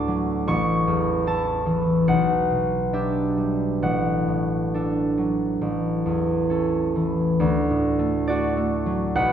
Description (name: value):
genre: classical, solo harp piece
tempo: 65-77 BPM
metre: 4/4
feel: rubato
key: D major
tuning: A4 = 440 Hz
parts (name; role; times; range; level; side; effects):
- concert harp; solo; 0.0-9.3 s; A1 to D6; -20 LUFS; equal; none
room: wet concert hall reverb, RT60 2.0 s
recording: recorded in a church or concert hall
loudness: -20 LUFS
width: side -9 dB against mid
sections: 0.0-7.4 A section; 7.4-9.3 B section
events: none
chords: 0.5 A; 2.1 G/B; 3.8 D/A; 5.6 A; 7.4 D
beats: | 0.48 1.27 2.08 2.93 | 3.83 4.73 5.62 6.49 | 7.39 8.28 9.16